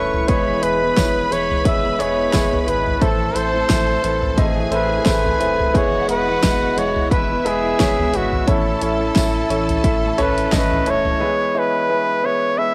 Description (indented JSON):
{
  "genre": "piano-driven pop",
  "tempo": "88 BPM",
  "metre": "4/4",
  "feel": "swing 56% on 16ths",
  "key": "E major",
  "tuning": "A4 = 440 Hz",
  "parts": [
    { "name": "breathy trumpet", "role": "melody", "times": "0.0-12.7 s", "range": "E4 to E5", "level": "-23 LUFS", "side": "equal", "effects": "cassette tape" },
    { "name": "bright studio violin section", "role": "second line", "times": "0.0-11.2 s", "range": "E4 to C#6", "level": "-31 LUFS", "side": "equal", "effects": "cassette tape" },
    { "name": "clear grand piano", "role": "accompaniment", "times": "0.0-12.7 s", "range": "A2 to E5", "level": "-24 LUFS", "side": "equal", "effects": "cassette tape" },
    { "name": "fingerpicked steel-string acoustic guitar", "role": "riff", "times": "0.0-11.2 s", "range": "E2 to E4", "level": "-31 LUFS", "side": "equal", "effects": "cassette tape" },
    { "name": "warm sub bass", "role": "bass", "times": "0.0-11.1 s", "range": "D#1 to A1", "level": "-30 LUFS", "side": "equal", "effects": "none" },
    { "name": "pop drum kit", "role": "drums", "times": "0.1-11.2 s", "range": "hi-hat, kick drum, snare drum, toms", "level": "-23 LUFS", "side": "equal", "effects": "cassette tape" },
    { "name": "tambourine", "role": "percussion", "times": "1.0-10.7 s", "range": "none", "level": "-34 LUFS", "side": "equal", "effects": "none" }
  ],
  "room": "light reverb, small room reverb",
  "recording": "home recording on cassette",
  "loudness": "-18 LUFS",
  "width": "mono",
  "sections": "0.0-11.2 A section; 11.2-12.7 A section",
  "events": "none",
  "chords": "0.3 E; 3.0 Am; 5.7 E; 8.5 A; 11.2 E"
}